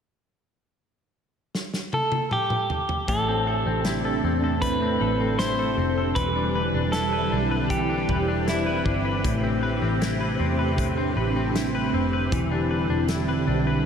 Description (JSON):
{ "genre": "dream pop", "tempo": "78 BPM", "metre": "4/4", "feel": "straight", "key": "A minor", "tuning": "A4 = 440 Hz", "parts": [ { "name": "loose indie drum kit", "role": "drums", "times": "1.5-13.3 s", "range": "hi-hat, kick drum, snare drum, toms", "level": "-30 LUFS", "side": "equal", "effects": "none" }, { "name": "semi-hollow electric guitar", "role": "melody", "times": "1.9-9.0 s", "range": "E4 to C5", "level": "-27 LUFS", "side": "equal", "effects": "analog delay" }, { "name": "string machine, full ensemble", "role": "sustained chords", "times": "3.1-13.9 s", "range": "C3 to G4", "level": "-26 LUFS", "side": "right 2 dB", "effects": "phaser, ensemble chorus" }, { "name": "clean electric guitar", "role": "arpeggios", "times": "3.1-13.9 s", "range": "A2 to B4", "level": "-27 LUFS", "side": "left 3 dB", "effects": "analog chorus, analog delay" }, { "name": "vintage muted picked electric bass", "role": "bass", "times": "3.1-13.9 s", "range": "E1 to E2", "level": "-28 LUFS", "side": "equal", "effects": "none" } ], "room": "wet lush hall reverb, RT60 3.2 s", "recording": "dreamy mix soaked in reverb", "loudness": "-22 LUFS", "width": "side -7 dB against mid", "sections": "0.0-3.1 A section; 3.1-13.9 B section", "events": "drum fill 1.5-3.1", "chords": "0.0 N.C.; 3.1 Am11; 6.2 Em7; 9.2 Am11; 12.3 Em7" }